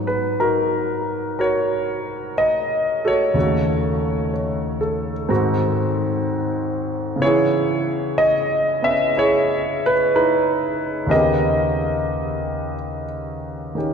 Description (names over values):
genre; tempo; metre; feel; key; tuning
solo jazz; 61 BPM; 4/4; swing 69% on 8ths, rubato; G# minor; A4 = 443 Hz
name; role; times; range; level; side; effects
warm concert grand piano; solo; 0.0-13.9 s; D#2 to E5; -18 LUFS; equal; none
room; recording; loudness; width
wet cathedral reverb, RT60 4.6 s; recorded in a church or concert hall; -18 LUFS; side -6 dB against mid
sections
0.0-13.9 A section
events
none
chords
0.0 G#m9; 3.4 D#m7b5; 5.3 G#7; 7.2 C#m9; 11.1 D#7b13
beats
0.38 1.37 2.36 | 3.35 4.33 5.30 6.26 | 7.22 8.18 9.15 10.13 | 11.10 12.08 13.08